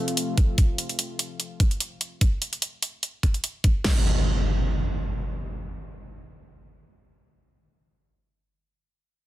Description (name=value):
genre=heavy wobble dubstep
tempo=147 BPM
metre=4/4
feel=swing 54% on 16ths, half-time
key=unclear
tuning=A4 = 437 Hz
part: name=lush unison pad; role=sustained chords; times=0.0-0.5 s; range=C3 to F4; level=-32 LUFS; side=left 1 dB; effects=chorus, sidechain pumping
part: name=electronic hi-hat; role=drums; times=0.1-3.7 s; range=none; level=-27 LUFS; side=right 1 dB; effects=studio reverb
part: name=dubstep drum kit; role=drums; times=0.4-3.9 s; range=crash cymbal, kick drum, snare drum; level=-22 LUFS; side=equal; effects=studio reverb
part: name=impact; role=sound effects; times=3.8-7.7 s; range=none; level=-25 LUFS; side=equal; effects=none
room=light reverb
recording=dense, heavily limited modern master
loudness=-23 LUFS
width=side -15 dB against mid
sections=0.0-3.8 A section; 3.8-7.1 B section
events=none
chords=0.0 F; 3.8 N.C.